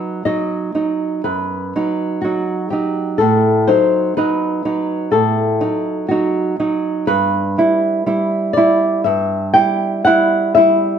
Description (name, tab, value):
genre	romantic duo for nylon-string guitar and classical guitar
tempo	61 BPM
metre	4/4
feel	rubato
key	unclear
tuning	A4 = 439 Hz
part	flamenco guitar	melody	0.0-11.0 s	F#4 to G5	-17 LUFS	left 3 dB	none
part	nylon-string guitar	accompaniment	0.0-11.0 s	F#2 to E4	-17 LUFS	right 3 dB	none
room	moderate stone room reverb, RT60 1.2 s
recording	band playing live in one room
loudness	-14 LUFS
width	side -8 dB against mid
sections	0.0-11.0 A section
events	none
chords	0.0 B; 3.2 B7/A; 7.1 Em/G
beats	0.26 1.25 2.23 | 3.20 4.18 5.14 6.11 | 7.09 8.07 9.06 10.06